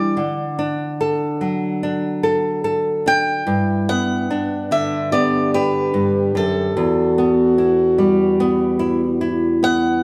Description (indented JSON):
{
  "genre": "acoustic folk-pop ballad",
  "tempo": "73 BPM",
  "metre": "4/4",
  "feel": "straight",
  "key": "unclear",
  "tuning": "A4 = 445 Hz",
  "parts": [
    { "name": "picked swing-style acoustic guitar", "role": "melody", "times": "0.0-10.0 s", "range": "A4 to G5", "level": "-24 LUFS", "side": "equal", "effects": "none" },
    { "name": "nylon-string guitar", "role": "accompaniment", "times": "0.0-10.0 s", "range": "E2 to A4", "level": "-21 LUFS", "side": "equal", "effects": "none" },
    { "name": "mellow French horn", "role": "second line", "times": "3.5-9.8 s", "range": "D4 to G4", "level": "-22 LUFS", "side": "equal", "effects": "none" }
  ],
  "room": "moderate stone room reverb, RT60 1.4 s",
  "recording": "band playing live in one room",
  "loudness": "-19 LUFS",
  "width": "mono",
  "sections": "0.0-10.0 A section",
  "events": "none",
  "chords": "0.2 D; 3.5 Gmaj7; 6.8 Emadd9"
}